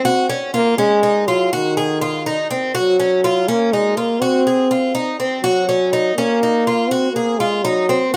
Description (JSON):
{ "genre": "progressive instrumental, progressive", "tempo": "245 BPM (eighths)", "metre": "11/8", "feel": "straight", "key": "unclear", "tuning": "A4 = 437 Hz", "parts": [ { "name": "warm French horn", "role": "melody", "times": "0.0-8.2 s", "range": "Eb3 to C4", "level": "-19 LUFS", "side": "equal", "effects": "none" }, { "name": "picked twelve-string acoustic guitar", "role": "arpeggios", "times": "0.0-8.2 s", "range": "C4 to Ab4", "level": "-21 LUFS", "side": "equal", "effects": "none" } ], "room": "moderate plate reverb, RT60 3.2 s", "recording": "none", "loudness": "-17 LUFS", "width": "mono", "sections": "0.0-8.2 A section", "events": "none", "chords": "0.1 Gb5; 1.5 Ab; 2.7 Gb5; 4.2 Fm7; 5.4 Ebm7; 6.9 Ab", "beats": "| 0.05 0.30 0.54 0.79 1.03 1.28 1.52 1.77 2.01 2.26 2.50 | 2.75 2.99 3.24 3.48 3.73 3.98 4.22 4.46 4.71 4.96 5.20 | 5.45 5.69 5.93 6.18 6.42 6.67 6.91 7.16 7.40 7.65 7.89 | 8.14" }